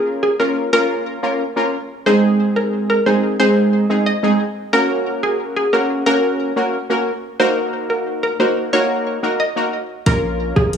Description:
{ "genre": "dancehall", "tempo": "90 BPM", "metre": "4/4", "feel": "straight", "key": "Bb minor", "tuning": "A4 = 439 Hz", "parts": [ { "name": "hollow square pluck", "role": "melody", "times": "0.0-10.7 s", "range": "Ab4 to Eb5", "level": "-20 LUFS", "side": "equal", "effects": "chorus, tape echo" }, { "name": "synth brass stab", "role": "accompaniment", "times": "0.0-10.8 s", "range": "Ab3 to Bb4", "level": "-17 LUFS", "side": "equal", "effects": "chorus" }, { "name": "warm 808-style bass", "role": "bass", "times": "10.1-10.8 s", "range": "Bb1", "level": "-22 LUFS", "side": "equal", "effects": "none" }, { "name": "afro-pop drum kit", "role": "drums", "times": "10.1-10.8 s", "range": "hi-hat, kick drum", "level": "-17 LUFS", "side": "equal", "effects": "none" }, { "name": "bongos", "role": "percussion", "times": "10.1-10.7 s", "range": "none", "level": "-27 LUFS", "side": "right 8 dB", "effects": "none" } ], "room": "light reverb, digital ambience", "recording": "studio reverb", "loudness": "-15 LUFS", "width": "side -7 dB against mid", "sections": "0.0-10.8 A section", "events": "none", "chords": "0.0 Bbm; 2.1 Ab; 4.7 Gb; 7.4 Ebm; 10.1 Bbm" }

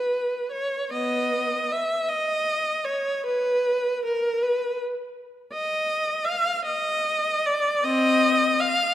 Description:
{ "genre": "classical, free, expressive piece for unaccompanied viola", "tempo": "52 BPM (dotted quarters)", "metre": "6/8", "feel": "uneven beats, rubato", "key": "unclear", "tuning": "A4 = 440 Hz", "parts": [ { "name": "rich viola", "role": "solo", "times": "0.0-8.9 s", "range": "B3 to F5", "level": "-22 LUFS", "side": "equal", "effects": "none" } ], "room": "moderate concert hall reverb, RT60 2.0 s", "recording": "none", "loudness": "-22 LUFS", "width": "side -13 dB against mid", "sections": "0.0-8.9 A section", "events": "none", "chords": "none" }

